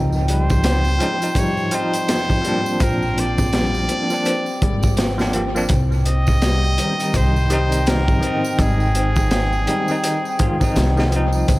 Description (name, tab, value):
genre	trip hop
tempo	83 BPM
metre	4/4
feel	swing 60% on 16ths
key	unclear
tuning	A4 = 439 Hz
part	bell-like tine electric piano	accompaniment	0.0-11.6 s	Eb3 to G4	-23 LUFS	equal	tremolo, vintage 12-bit sampler grit, tape echo
part	dark analog pad	sustained chords	0.0-11.6 s	G5	-27 LUFS	equal	chorus
part	felt-muted upright piano	arpeggios	0.0-11.6 s	G3 to C4	-28 LUFS	left 4 dB	tape echo
part	upright bass	bass	0.0-11.6 s	Ab1 to Db2	-20 LUFS	equal	none
part	tambourine	percussion	0.1-11.6 s	none	-36 LUFS	right 5 dB	none
part	trumpet with straight mute	melody	0.3-11.1 s	Ab4 to Eb5	-25 LUFS	equal	tape echo
part	crunchy breakbeat drum kit	drums	0.3-11.6 s	hi-hat, kick drum, snare drum	-21 LUFS	equal	dub echo
room	light reverb, small room ambience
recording	echo-heavy mix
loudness	-16 LUFS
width	side -19 dB against mid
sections	0.0-11.6 A section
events	none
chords	0.0 Dbadd9; 2.8 Bbadd9; 5.7 Cm; 8.6 Ab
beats	0.64 1.36 2.08 | 2.81 3.53 4.25 4.98 | 5.70 6.42 7.15 7.87 | 8.59 9.31 10.04 10.76 | 11.48